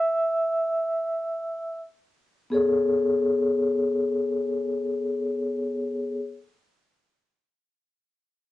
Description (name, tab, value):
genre	hip hop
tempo	free time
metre	none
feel	none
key	A major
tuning	A4 = 440 Hz
part	vibraphone with medium mallets	accompaniment	0.0-6.2 s	B3 to E6	-23 LUFS	left 1 dB	cassette tape
room	wet booth ambience, RT60 0.2 s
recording	home recording on cassette, nothing above 10.7 kHz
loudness	-23 LUFS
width	side -16 dB against mid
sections	0.0-2.5 A section; 2.5-5.4 B section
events	vibraphone solo 0.0-2.5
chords	0.0 N.C.; 2.5 Amaj9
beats	free time